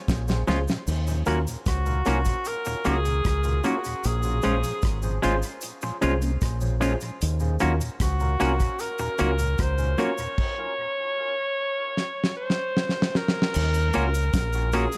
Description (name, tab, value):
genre	lovers rock reggae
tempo	76 BPM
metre	4/4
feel	straight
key	Eb dorian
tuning	A4 = 440 Hz
part	bright alto saxophone	melody	0.0-15.0 s	Gb4 to Db5	-31 LUFS	equal	dub echo
part	deep dub fingered electric bass	bass	0.1-14.9 s	Ab1 to Eb2	-27 LUFS	equal	none
part	damped 70s drum kit	drums	0.1-15.0 s	crash cymbal, hi-hat, kick drum, rim click, snare drum	-30 LUFS	equal	dub echo
part	cabasa	percussion	0.1-15.0 s	none	-45 LUFS	equal	none
part	mellow tonewheel organ	accompaniment	0.3-10.3 s	Eb2 to Eb4	-38 LUFS	equal	none
part	overdriven tine electric piano	accompaniment	0.5-15.0 s	Db4 to C5	-34 LUFS	equal	dub echo
part	semi-hollow electric guitar	stabs	0.5-14.8 s	Ab3 to Gb4	-31 LUFS	equal	none
room	light reverb, small room ambience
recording	none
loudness	-25 LUFS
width	mono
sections	0.9-13.5 A section; 13.5-15.0 B section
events	drum fill 0.0-0.9, 12.0-13.5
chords	0.0 Bbm7; 0.9 Ebm7; 4.0 Bbm7; 7.2 Ebm7; 10.4 N.C.; 13.5 Ebm7